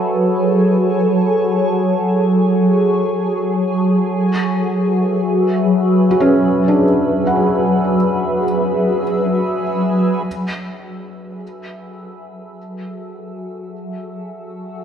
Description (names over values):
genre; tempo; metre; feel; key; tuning
ambient; free time; none; none; F# minor; A4 = 440 Hz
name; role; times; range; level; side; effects
shimmering ambient pad; sustained chords; 0.0-14.8 s; F#3 to E5; -16 LUFS; equal; chorus, built-in reverb, phaser
analog drone; drone; 0.0-10.3 s; F#3 to C#5; -27 LUFS; right 1 dB; none
felt-muted upright piano; arpeggios; 6.1-10.3 s; C#4 to F#5; -19 LUFS; equal; tape echo
room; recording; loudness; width
wet concert hall reverb, RT60 2.2 s; none; -14 LUFS; side -8 dB against mid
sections
0.0-10.3 A section; 10.3-14.8 B section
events
none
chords
0.0 F#madd9; 4.1 E/F#; 10.3 F#m7